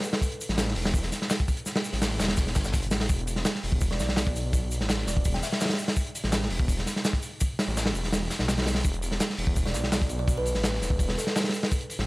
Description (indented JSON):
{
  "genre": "drum and bass, jungle",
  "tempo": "167 BPM",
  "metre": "4/4",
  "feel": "straight",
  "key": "E minor",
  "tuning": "A4 = 440 Hz",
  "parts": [
    { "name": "crunchy breakbeat drum kit", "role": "drums", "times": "0.0-12.1 s", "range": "hi-hat, kick drum, snare drum", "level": "-26 LUFS", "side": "equal", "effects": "none" },
    { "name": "crunchy breakbeat drum kit", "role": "drums", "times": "0.0-12.0 s", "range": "hi-hat, shaker, snare drum", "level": "-35 LUFS", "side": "left 1 dB", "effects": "high-pass filter on hats, high-pass filter on snare, high-pass filter on perc, high-pass filter on room" },
    { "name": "detuned saw bass", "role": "bass", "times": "0.5-12.1 s", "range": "E1 to B1", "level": "-30 LUFS", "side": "equal", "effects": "none" },
    { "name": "kalimba", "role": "melody", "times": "3.9-5.6, 9.7-11.3 s", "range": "A4 to G5", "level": "-36 LUFS", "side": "right 1 dB", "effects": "dub echo" }
  ],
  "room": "studio ambience",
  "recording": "dry, gritty hardware recording",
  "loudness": "-24 LUFS",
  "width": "side -22 dB against mid",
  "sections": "0.0-12.1 A section",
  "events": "none",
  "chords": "0.0 E5",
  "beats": "| 0.22 0.58 0.94 1.30 | 1.66 2.02 2.38 2.74 | 3.10 3.46 3.81 4.17 | 4.53 4.89 5.25 5.61 | 5.97 6.33 6.69 7.05 | 7.41 7.77 8.13 8.48 | 8.84 9.20 9.56 9.92 | 10.28 10.64 11.00 11.36 | 11.72"
}